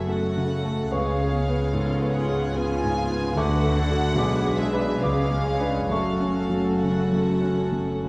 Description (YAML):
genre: classical, romantic movement for piano and orchestra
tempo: 65-75 BPM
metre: 3/4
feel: rubato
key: F# minor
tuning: A4 = 440 Hz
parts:
  - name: clear concert grand piano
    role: melody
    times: 0.0-8.1 s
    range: B1 to B4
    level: -28 LUFS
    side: equal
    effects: none
  - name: warm symphonic violin section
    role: melody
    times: 0.0-8.1 s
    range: E5 to G#5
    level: -36 LUFS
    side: equal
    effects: none
  - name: warm clarinet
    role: second line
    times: 0.0-8.1 s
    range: E#4 to B4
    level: -37 LUFS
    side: equal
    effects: none
  - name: warm symphonic violin section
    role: second line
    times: 0.0-8.1 s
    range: E#4 to C#5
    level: -36 LUFS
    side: equal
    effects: none
  - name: dark symphonic viola section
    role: accompaniment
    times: 0.0-8.1 s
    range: G#3 to E#4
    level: -34 LUFS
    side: equal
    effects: none
  - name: dark chamber cello section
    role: bass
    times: 0.0-8.1 s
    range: F#2 to D3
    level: -33 LUFS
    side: equal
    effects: none
  - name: dark studio double bass section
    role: bass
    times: 0.0-8.1 s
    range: F#1 to D2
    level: -33 LUFS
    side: equal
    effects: none
  - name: silver concert flute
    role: second line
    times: 0.9-6.3 s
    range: C#6 to D6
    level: -37 LUFS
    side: equal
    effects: none
  - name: mellow bassoon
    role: accompaniment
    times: 0.9-6.3 s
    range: G#3 to B3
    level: -37 LUFS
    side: equal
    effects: none
room: wet scoring stage reverb, RT60 1.7 s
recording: dark, warm production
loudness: -24 LUFS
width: mono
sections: 0.0-8.1 A section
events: none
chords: 0.0 F#m; 0.9 C#7; 3.4 D; 4.2 G#dim/B; 5.0 C#7b9; 5.9 F#m